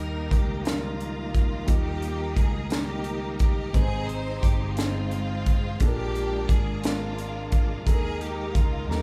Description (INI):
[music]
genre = slow gospel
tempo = 58 BPM (dotted quarters)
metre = 6/8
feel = straight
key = unclear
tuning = A4 = 440 Hz
[part]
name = bright studio string section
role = melody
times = 0.0-9.0 s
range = Ab3 to C5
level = -36 LUFS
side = equal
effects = none
[part]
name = warm concert grand piano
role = accompaniment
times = 0.0-9.0 s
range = Bb2 to C5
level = -37 LUFS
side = equal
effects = none
[part]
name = bright tonewheel organ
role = sustained chords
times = 0.0-9.0 s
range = Eb3 to C5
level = -40 LUFS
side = equal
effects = slow rotary speaker, chorus vibrato
[part]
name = fingered electric bass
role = bass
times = 0.0-9.0 s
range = G1 to Eb2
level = -34 LUFS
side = equal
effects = none
[part]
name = crisp fusion drum kit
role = drums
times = 0.3-9.0 s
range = hi-hat, kick drum, snare drum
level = -26 LUFS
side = equal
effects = none
[sound]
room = moderate large studio reverb, RT60 0.9 s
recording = band playing live in one room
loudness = -26 LUFS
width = mono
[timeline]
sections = 0.0-9.0 A section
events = none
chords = 0.0 Eb; 3.7 Ab; 5.8 Bb7; 7.9 Ebsus4